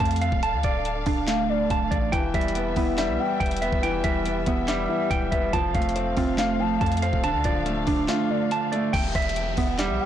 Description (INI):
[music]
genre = hip hop, trap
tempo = 141 BPM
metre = 4/4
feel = half-time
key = E phrygian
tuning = A4 = 440 Hz
[part]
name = dark studio string section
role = sustained chords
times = 0.0-10.1 s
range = D3 to F5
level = -34 LUFS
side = left 4 dB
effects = none
[part]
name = semi-hollow electric guitar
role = arpeggios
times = 0.0-10.1 s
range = G3 to A5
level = -26 LUFS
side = right 6 dB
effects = low-pass filter, ping-pong delay
[part]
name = hard-hitting 808-style bass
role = bass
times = 0.0-10.0 s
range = D1 to F2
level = -30 LUFS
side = left 1 dB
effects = tube saturation
[part]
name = trap drum kit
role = drums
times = 0.0-9.9 s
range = crash cymbal, handclaps, hi-hat, kick drum, rim click, snare drum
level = -28 LUFS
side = left 1 dB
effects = none
[part]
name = gliding portamento lead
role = second line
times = 1.3-10.1 s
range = D5 to A5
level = -33 LUFS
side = left 8 dB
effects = chorus, ping-pong delay
[part]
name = clear concert grand piano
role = accompaniment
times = 2.1-9.0 s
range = D3 to F5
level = -28 LUFS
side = left 2 dB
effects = low-pass filter
[part]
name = downlifter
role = sound effects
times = 8.9-10.1 s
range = none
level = -34 LUFS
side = left 2 dB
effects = none
[sound]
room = light reverb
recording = blown-out, overdriven recording, overdrive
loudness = -22 LUFS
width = side -10 dB against mid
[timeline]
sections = 0.0-8.9 A section; 8.9-10.1 B section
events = kick muted 8.1-8.9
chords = 0.4 Dm; 2.1 Em; 5.5 F; 7.2 Dm; 8.9 Em